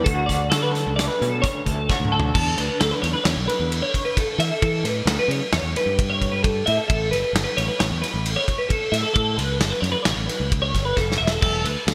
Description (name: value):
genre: math rock and midwest emo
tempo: 132 BPM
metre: 5/4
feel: straight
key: unclear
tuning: A4 = 436 Hz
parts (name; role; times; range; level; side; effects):
- electric guitar through a small old amp; accompaniment; 0.0-4.6 s; D2 to F#4; -33 LUFS; equal; tremolo
- twelve-string electric guitar; arpeggios; 0.0-11.9 s; F#4 to E5; -26 LUFS; equal; analog chorus
- growling fingered electric bass; bass; 0.0-11.9 s; E1 to E3; -28 LUFS; equal; overdrive
- loose indie drum kit; drums; 0.1-11.9 s; crash cymbal, hi-hat, kick drum, ride cymbal, snare drum, toms; -26 LUFS; equal; gated reverb
room: moderate lush hall reverb, RT60 1.8 s, studio ambience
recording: bright 1980s-style digital production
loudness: -22 LUFS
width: mono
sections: 0.0-2.3 A section; 2.3-11.9 B section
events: drum fill 1.9-2.3, 11.0-11.4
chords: 0.1 Dmaj7; 2.3 Em7; 6.9 A; 11.4 E7(no3)